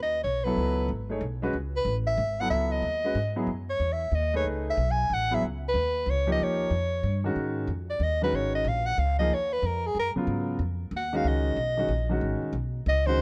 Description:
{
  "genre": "modal jazz",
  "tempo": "185 BPM",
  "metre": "3/4",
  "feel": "swing 64% on 8ths",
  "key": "C# minor, G# dorian from 7.4 s",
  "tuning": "A4 = 440 Hz",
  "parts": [
    { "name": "warm soprano saxophone", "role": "melody", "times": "0.0-13.2 s", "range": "G#4 to G#5", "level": "-30 LUFS", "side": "equal", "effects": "none" },
    { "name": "upright bass", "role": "bass", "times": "0.0-13.2 s", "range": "G#1 to G#2", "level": "-32 LUFS", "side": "equal", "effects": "none" },
    { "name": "warm baby grand piano", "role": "accompaniment", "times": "0.5-13.2 s", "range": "C#3 to C#5", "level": "-33 LUFS", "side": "equal", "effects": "none" }
  ],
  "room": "light reverb",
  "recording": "dark, warm production",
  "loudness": "-27 LUFS",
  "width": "mono",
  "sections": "0.0-7.4 A section; 7.4-13.2 B section",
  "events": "soprano saxophone solo 7.4-13.2",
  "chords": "0.0 C#m11; 3.5 F#m11; 6.4 D#9; 7.4 G#9sus4"
}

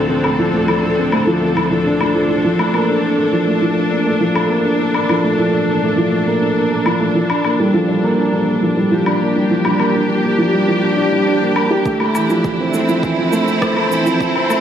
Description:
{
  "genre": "piano and strings electronica",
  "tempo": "102 BPM",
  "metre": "4/4",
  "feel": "straight",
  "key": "unclear",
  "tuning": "A4 = 438 Hz",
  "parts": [
    { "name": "bright symphonic string section", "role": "sustained chords", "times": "0.0-14.6 s", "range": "C4 to A4", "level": "-19 LUFS", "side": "equal", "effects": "none" },
    { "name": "felt-muted upright piano", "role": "riff", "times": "0.0-14.6 s", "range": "E3 to G4", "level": "-15 LUFS", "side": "equal", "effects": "digital delay" },
    { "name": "rich chamber cello section", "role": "bass", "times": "0.0-2.4 s", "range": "D2", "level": "-27 LUFS", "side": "equal", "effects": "sidechain pumping" },
    { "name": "electronic woodblock, shaker and rim click", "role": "drums", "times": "0.2-14.6 s", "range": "none", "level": "-23 LUFS", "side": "left 2 dB", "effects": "high-pass filter on perc, high-pass filter on snare, high-pass filter on room" },
    { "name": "electronic kick drum", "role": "drums", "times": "11.9-14.3 s", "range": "none", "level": "-27 LUFS", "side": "equal", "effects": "overdrive" }
  ],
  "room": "moderate lush hall reverb, RT60 1.7 s, studio reverb",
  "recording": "dark, warm production, high-pass filter",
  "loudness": "-13 LUFS",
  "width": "side -9 dB against mid",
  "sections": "0.0-2.4 A section; 2.4-14.6 B section",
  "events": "build-up 2.4-14.6",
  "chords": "0.0 Dm7; 2.4 Bbmaj7; 7.2 Gm7; 11.9 Fmaj7"
}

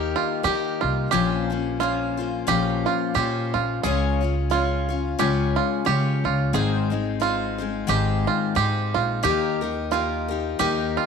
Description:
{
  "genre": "acoustic folk duo or small band",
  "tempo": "89 BPM",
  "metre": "4/4",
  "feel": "swing 56% on 8ths",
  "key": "Bb dorian",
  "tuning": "A4 = 440 Hz",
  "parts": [
    { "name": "picked steel-string acoustic guitar", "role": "accompaniment", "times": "0.0-11.1 s", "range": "Ab2 to Db5", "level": "-25 LUFS", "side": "left 10 dB", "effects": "none" },
    { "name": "bluegrass banjo", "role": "arpeggios", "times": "0.0-11.1 s", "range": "F4 to Ab4", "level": "-25 LUFS", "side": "right 10 dB", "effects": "none" },
    { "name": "upright bass", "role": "bass", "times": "0.0-11.0 s", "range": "Ab1 to Eb3", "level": "-26 LUFS", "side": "right 1 dB", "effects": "none" }
  ],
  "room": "moderate echo chamber reverb, RT60 2.3 s",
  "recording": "1960s-style stereo with parts hard left and right",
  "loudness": "-21 LUFS",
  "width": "side -6 dB against mid",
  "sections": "0.0-11.1 A section",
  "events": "none",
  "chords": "0.0 Eb; 1.1 Bbmadd9; 3.8 Db; 6.5 Ab; 9.2 Eb"
}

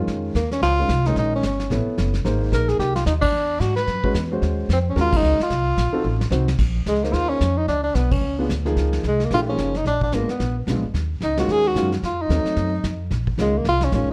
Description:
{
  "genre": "jazz, small-group swing and bop",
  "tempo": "221 BPM",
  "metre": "4/4",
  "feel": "swing 60% on 8ths",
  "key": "Bb minor",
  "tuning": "A4 = 440 Hz",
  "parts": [
    { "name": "warm upright piano", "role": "accompaniment", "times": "0.0-14.1 s", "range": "D#3 to C#5", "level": "-28 LUFS", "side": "equal", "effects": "none" },
    { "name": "upright bass", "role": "bass", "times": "0.0-14.1 s", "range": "Gb1 to G#2", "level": "-25 LUFS", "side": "equal", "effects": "none" },
    { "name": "vintage brush drum kit", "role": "drums", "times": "0.1-14.1 s", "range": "brushed snare drum, crash cymbal, hi-hat, kick drum, snare drum", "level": "-30 LUFS", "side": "equal", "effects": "none" },
    { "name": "mellow tenor saxophone", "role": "melody", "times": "0.4-14.1 s", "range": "Ab3 to B4", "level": "-24 LUFS", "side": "equal", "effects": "plate reverb" }
  ],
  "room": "light reverb",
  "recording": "dark, warm production",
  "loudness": "-21 LUFS",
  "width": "mono",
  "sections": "0.0-6.6 A section; 6.6-14.1 B section",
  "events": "band accent 3.2, 5.1, 8.1; drum fill 6.0-6.6",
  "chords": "0.1 Dbmaj9; 1.2 Bbm7; 1.7 Aadd9; 2.2 Abadd9; 3.3 E9; 4.4 Ebm7; 5.5 F7b9; 6.6 Bbm9; 7.7 Db7b9; 8.8 Gbmaj7; 9.9 Bb7b9; 10.9 Ebm7; 12.0 F7b9; 13.1 Bbm9"
}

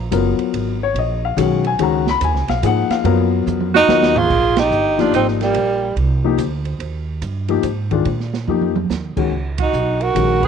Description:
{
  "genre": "modal jazz",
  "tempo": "144 BPM",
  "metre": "3/4",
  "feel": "swing 65% on 8ths",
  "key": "unclear",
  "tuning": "A4 = 439 Hz",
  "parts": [
    { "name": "upright bass", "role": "bass", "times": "0.0-10.5 s", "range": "Gb1 to Bb2", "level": "-21 LUFS", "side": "right 2 dB", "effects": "none" },
    { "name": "warm baby grand piano", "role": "accompaniment", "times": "0.1-10.4 s", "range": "Eb3 to Cb6", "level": "-18 LUFS", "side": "left 10 dB", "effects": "none" },
    { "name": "open jazz drum kit", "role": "drums", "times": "0.1-10.5 s", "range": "crash cymbal, hi-hat, kick drum, ride cymbal, snare drum, toms", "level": "-26 LUFS", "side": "right 7 dB", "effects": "none" },
    { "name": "clear alto saxophone", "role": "second line", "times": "3.7-5.9, 9.6-10.5 s", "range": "Bb3 to Cb5", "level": "-20 LUFS", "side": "right 15 dB", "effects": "none" },
    { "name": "breathy tenor saxophone", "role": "melody", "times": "3.8-5.9, 9.6-10.5 s", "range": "G3 to Gb4", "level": "-16 LUFS", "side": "right 1 dB", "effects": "none" }
  ],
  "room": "light reverb, studio reverb",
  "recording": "1960s-style stereo with parts hard left and right",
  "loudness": "-15 LUFS",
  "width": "side -7 dB against mid",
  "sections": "0.0-4.3 A section; 4.3-10.5 B section",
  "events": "drum fill 3.5-4.3, 8.5-8.9; band accent 4.5, 9.5",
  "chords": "0.0 Db13sus4; 4.3 Bb7sus4; 9.3 Db13sus4"
}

